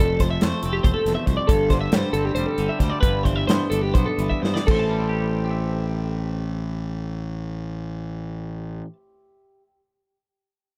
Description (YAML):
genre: math rock and midwest emo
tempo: 238-280 BPM (eighths)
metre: 7/8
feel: straight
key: A minor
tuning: A4 = 440 Hz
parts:
  - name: twangy electric guitar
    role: accompaniment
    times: 0.0-9.7 s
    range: E2 to E5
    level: -31 LUFS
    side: equal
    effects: spring reverb
  - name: twelve-string electric guitar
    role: arpeggios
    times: 0.0-8.9 s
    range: G4 to A5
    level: -28 LUFS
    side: equal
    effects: lush chorus
  - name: fuzz fingered electric bass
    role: bass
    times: 0.0-8.8 s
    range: E1 to G2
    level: -28 LUFS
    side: equal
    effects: overdrive
  - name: modern studio drum kit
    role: drums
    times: 0.2-4.8 s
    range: crash cymbal, hi-hat, kick drum, snare drum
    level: -24 LUFS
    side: equal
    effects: none
room: small room ambience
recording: rough home demo mix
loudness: -23 LUFS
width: mono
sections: 0.0-4.7 A section; 4.7-8.2 B section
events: slowing down 1.5-4.7; drum fill 4.3-4.7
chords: 0.0 Fmaj7; 1.5 Gsus4; 3.0 Cmaj9/G; 4.7 Am7